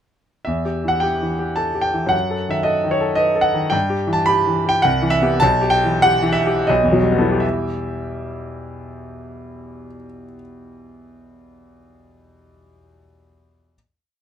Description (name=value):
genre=classical, romantic character piece for solo piano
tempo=78-113 BPM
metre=3/4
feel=rubato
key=E minor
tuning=A4 = 440 Hz
part: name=bright concert grand piano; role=solo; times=0.4-13.8 s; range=B1 to B5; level=-17 LUFS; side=equal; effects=none
room=light reverb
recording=close, detailed microphones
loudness=-16 LUFS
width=side -9 dB against mid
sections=0.5-7.4 A section; 7.4-11.5 final chord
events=slowing down 2.9-7.4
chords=0.5 Em; 2.1 D#dim/F#; 3.7 Em/G; 4.8 Cmaj7; 5.4 Em/B; 6.7 B7; 7.4 Em